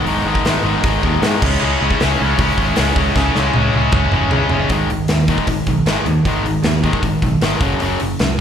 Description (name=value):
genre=punk rock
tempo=155 BPM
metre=4/4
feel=straight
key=G# minor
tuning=A4 = 439 Hz
part: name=distorted electric guitar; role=riff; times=0.0-8.4 s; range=F#2 to C#4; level=-19 LUFS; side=left 9 dB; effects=overdrive, slapback echo
part: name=distorted electric guitar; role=riff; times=0.0-8.4 s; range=F#2 to E4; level=-22 LUFS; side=right 12 dB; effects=distortion, slapback echo
part: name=modern bright picked electric bass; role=bass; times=0.1-8.4 s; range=F#1 to C#3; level=-20 LUFS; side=equal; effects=none
part: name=big rock drum kit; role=drums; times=0.1-8.3 s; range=crash cymbal, hi-hat, kick drum, snare drum, toms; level=-19 LUFS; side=equal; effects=none
part: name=heavy high-gain guitar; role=riff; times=1.6-4.7 s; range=C#3 to C#4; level=-22 LUFS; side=equal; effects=distortion, slapback echo
room=small room ambience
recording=live gig heard through the venue's PA, club reverb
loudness=-14 LUFS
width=side -8 dB against mid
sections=0.0-4.7 A section; 4.7-8.4 B section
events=drum fill 3.2-4.7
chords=0.0 G#m; 1.4 C#m; 4.7 G#5; 7.6 F#5